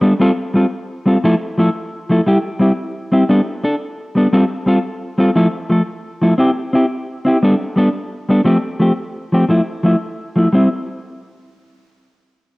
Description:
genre	highlife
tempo	116 BPM (dotted quarters)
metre	12/8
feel	straight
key	C major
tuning	A4 = 440 Hz
part	mellow electric guitar	solo	0.0-10.7 s	F3 to A4	-14 LUFS	equal	cassette tape
room	light reverb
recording	home recording on cassette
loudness	-14 LUFS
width	side -23 dB against mid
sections	0.0-2.3 A section; 2.3-10.5 B section; 10.5-12.6 C section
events	none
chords	0.2 Fadd9; 1.2 Fmaj7; 2.3 C; 3.3 Gadd9; 4.3 Fadd9; 5.4 Fmaj7; 6.4 C; 7.4 Gadd9; 8.5 Fadd9; 9.5 Fmaj7; 10.5 C

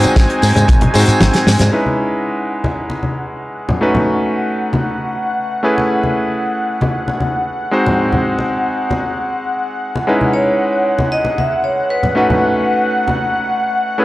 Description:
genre	nu-disco, nu disco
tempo	115 BPM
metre	4/4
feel	straight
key	C# minor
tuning	A4 = 440 Hz
part	clear electric grand piano	accompaniment	0.0-14.0 s	G#3 to B#4	-18 LUFS	equal	sidechain pumping, tape echo
part	lush unison pad	sustained chords	0.0-14.0 s	F#5 to G#5	-20 LUFS	left 1 dB	chorus, sidechain pumping
part	fingered electric bass with an envelope filter	bass	0.0-1.7 s	G#1 to G#2	-14 LUFS	equal	transformer saturation
part	damped 70s drum kit	drums	0.0-1.7 s	hi-hat, snare drum, tambourine, toms	-16 LUFS	equal	none
part	congas	percussion	0.0-13.2 s	none	-21 LUFS	left 1 dB	none
part	kick drum	drums	0.2-0.8 s	none	-11 LUFS	equal	none
part	vibraphone with hard mallets	melody	10.3-12.9 s	B4 to E5	-18 LUFS	right 1 dB	none
room	moderate echo chamber reverb, RT60 1.4 s, studio ambience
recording	dry, gritty hardware recording, cassette tape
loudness	-13 LUFS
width	side -17 dB against mid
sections	0.0-1.7 A section; 1.7-14.0 B section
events	drum fill 0.7-1.7; kick drops out 1.2-1.7; filter sweep on analog synth pad 1.7-14.0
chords	0.0 G#7; 1.7 C#m7; 3.8 B7; 5.6 Amaj7; 7.7 G#7; 10.1 C#m7; 12.2 B7

